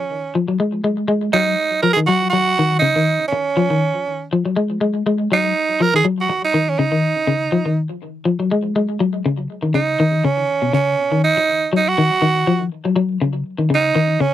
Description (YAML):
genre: afrobeat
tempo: 121 BPM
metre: 4/4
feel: swing 54% on 16ths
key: Eb minor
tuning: A4 = 443 Hz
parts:
  - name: raspy tenor saxophone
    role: melody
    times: 0.0-14.3 s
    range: C#4 to Bb4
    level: -17 LUFS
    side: right 4 dB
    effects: none
  - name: electric guitar at the edge of break-up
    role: arpeggios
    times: 0.4-14.3 s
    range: B2 to Ab3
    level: -18 LUFS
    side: left 3 dB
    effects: tremolo, tape echo
room: light reverb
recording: dry, close 1970s-style studio recording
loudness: -15 LUFS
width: side -12 dB against mid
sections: 0.0-9.0 A section; 9.0-14.3 B section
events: none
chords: 0.1 N.C.; 1.1 Ebm; 2.1 N.C.; 3.1 Dbadd9; 4.1 N.C.; 5.0 Ebm; 6.0 Dbsus4; 7.0 Dbadd9; 8.0 Fm; 9.0 Ebm7; 10.0 Badd9 (rootless); 11.0 Ebm; 12.0 Ebmadd9; 13.0 Ebm7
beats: 0.09 0.58 | 1.08 1.57 2.07 2.57 | 3.06 3.56 4.05 4.55 | 5.05 5.54 6.04 6.53 | 7.03 7.52 8.02 8.51 | 9.01 9.50 10.00 10.49 | 10.98 11.48 11.97 12.46 | 12.96 13.45 13.95